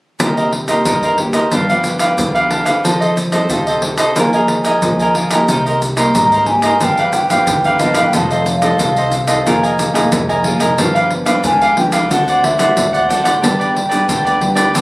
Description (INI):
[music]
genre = samba and choro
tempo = 91 BPM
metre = 4/4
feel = straight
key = C minor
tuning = A4 = 440 Hz
[part]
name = cavaquinho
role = accompaniment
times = 0.2-14.8 s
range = D4 to Ab5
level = -16 LUFS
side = right 1 dB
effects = none
[part]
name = nylon-string guitar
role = accompaniment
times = 0.2-14.8 s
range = G2 to A4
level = -19 LUFS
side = equal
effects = none
[part]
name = egg shaker, surdo and pandeiro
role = percussion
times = 0.2-14.8 s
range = none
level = -19 LUFS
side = equal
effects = none
[part]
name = upright bass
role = bass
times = 5.5-14.8 s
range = F1 to D2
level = -23 LUFS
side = equal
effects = none
[part]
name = mellow hollow wooden flute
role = melody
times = 6.2-14.8 s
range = Eb5 to Bb5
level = -15 LUFS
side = equal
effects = none
[sound]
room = moderate studio reverb, RT60 0.6 s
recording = recorded on a phone in the room, club reverb, compression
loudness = -12 LUFS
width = side -21 dB against mid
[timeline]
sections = 0.2-5.5 A section; 5.5-14.8 B section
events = none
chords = 0.2 Cm7; 1.5 G7; 2.8 F7; 4.2 Bb7sus4/F; 5.5 Cm7; 6.8 G7; 8.1 F7; 9.5 Bb7sus4/F; 10.8 G7; 12.1 D7; 13.4 G